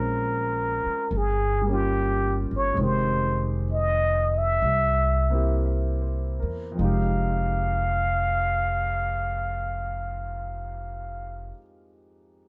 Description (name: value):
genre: jazz ballad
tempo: 51-75 BPM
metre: 4/4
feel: swing 69% on 8ths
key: F minor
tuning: A4 = 440 Hz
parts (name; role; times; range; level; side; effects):
- trumpet with plunger mute; melody; 0.0-11.5 s; G4 to F5; -28 LUFS; equal; none
- clear concert grand piano; accompaniment; 0.0-12.5 s; F2 to E5; -34 LUFS; equal; none
- upright bass; bass; 0.0-11.5 s; F1 to E2; -29 LUFS; equal; none
room: light reverb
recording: none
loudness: -25 LUFS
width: mono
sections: 0.0-6.8 A section; 6.8-11.4 B section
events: slowing down 0.0-6.8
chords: 0.0 Bbm7; 1.1 Gm7b5; 2.8 Fm7; 4.6 C7; 6.8 Fm7